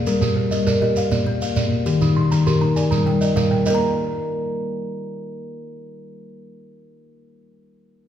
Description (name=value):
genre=southern african traditional, mbira-style interlocking cycle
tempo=134 BPM (dotted quarters)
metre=12/8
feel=straight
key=unclear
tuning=A4 = 440 Hz
part: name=buzzing kalimba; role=arpeggios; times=0.0-7.2 s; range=Eb3 to C6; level=-25 LUFS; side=right 3 dB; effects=none
part: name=kalimba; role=arpeggios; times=0.0-7.3 s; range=Eb3 to Bb5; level=-21 LUFS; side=left 2 dB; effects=none
part: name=shekere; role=percussion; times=0.1-3.8 s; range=none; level=-23 LUFS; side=right 2 dB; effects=none
room=wet recital hall reverb, RT60 1.7 s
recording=heard from further back in the room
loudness=-17 LUFS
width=side -10 dB against mid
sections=0.0-3.7 A section; 3.7-7.2 B section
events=kalimba fill 2.0-3.7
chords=0.1 Gm; 1.0 Bb; 1.9 Eb; 2.8 Gm; 3.7 N.C.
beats=| 0.06 0.51 0.96 1.41 | 1.86 2.31 2.76 3.21 | 3.66 4.11 4.56 5.01 | 5.46 5.91 6.35 6.80